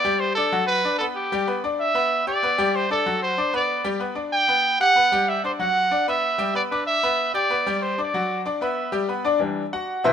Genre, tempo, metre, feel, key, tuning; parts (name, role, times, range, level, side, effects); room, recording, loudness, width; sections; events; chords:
latin; 189 BPM; 4/4; straight; A4 = 440 Hz
clear trumpet; melody; 0.0-9.1 s; G4 to G5; -21 LUFS; right 2 dB
bright concert grand piano; accompaniment; 0.0-10.1 s; B2 to G6; -24 LUFS; left 3 dB
light reverb; minimal, uncompressed stereo recording; -20 LUFS; side -8 dB against mid
0.0-9.4 A section
0.0 Gsus2; 0.5 D; 1.2 G; 3.1 D; 3.7 Gmaj7; 5.6 D; 6.2 G; 8.1 D; 8.8 Em7